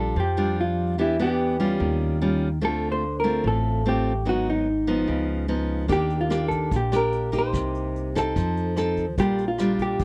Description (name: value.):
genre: bossa nova.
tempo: 146 BPM.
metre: 4/4.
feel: straight.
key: Bb major.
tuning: A4 = 440 Hz.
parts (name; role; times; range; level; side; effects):
hollow-body jazz guitar; melody; 0.0-10.0 s; Eb4 to C5; -29 LUFS; equal; none.
nylon-string guitar; accompaniment; 0.0-10.0 s; Ab2 to A4; -28 LUFS; equal; none.
upright bass; bass; 0.0-10.0 s; Ab1 to F2; -30 LUFS; equal; none.
vintage brush drum kit; drums; 5.9-10.0 s; hi-hat, kick drum, rim click; -32 LUFS; equal; none.
room: little or no reverb.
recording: dry, close 1970s-style studio recording.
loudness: -24 LUFS.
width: mono.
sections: 0.0-10.0 A section.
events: none.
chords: 0.0 Bb6; 1.0 Em7; 1.8 Eb9; 2.6 Dm7; 4.3 Abm7; 5.1 Db9; 5.9 Ebmaj7; 7.5 Cm7; 8.4 F7; 9.2 Bb6.